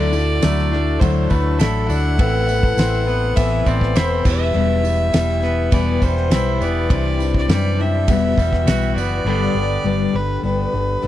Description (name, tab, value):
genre	folk rock and heartland rock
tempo	102 BPM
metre	4/4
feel	straight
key	E minor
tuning	A4 = 441 Hz
part	clear fiddle	melody	0.0-11.1 s	A4 to F#5	-24 LUFS	equal	none
part	picked twelve-string acoustic guitar	accompaniment	0.0-11.1 s	E2 to G4	-22 LUFS	left 7 dB	none
part	tonewheel organ	sustained chords	0.0-9.3 s	G3 to C5	-31 LUFS	right 2 dB	slow rotary speaker, chorus vibrato
part	twangy electric guitar	riff	0.0-11.1 s	E2 to G4	-25 LUFS	right 2 dB	spring reverb
part	hollow-body short-scale fingered electric bass	bass	0.0-11.1 s	E1 to F#2	-20 LUFS	equal	none
part	tambourine	percussion	0.1-9.1 s	none	-40 LUFS	right 25 dB	none
part	damped 70s drum kit	drums	0.4-8.8 s	crash cymbal, kick drum, ride cymbal, snare drum	-20 LUFS	equal	none
room	little or no reverb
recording	dry, close 1970s-style studio recording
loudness	-15 LUFS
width	side -13 dB against mid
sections	0.0-9.3 A section; 9.3-11.1 B section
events	none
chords	0.0 Dadd9; 2.2 Amadd9; 4.2 Em; 6.9 Cadd9; 8.1 Emadd9; 9.3 G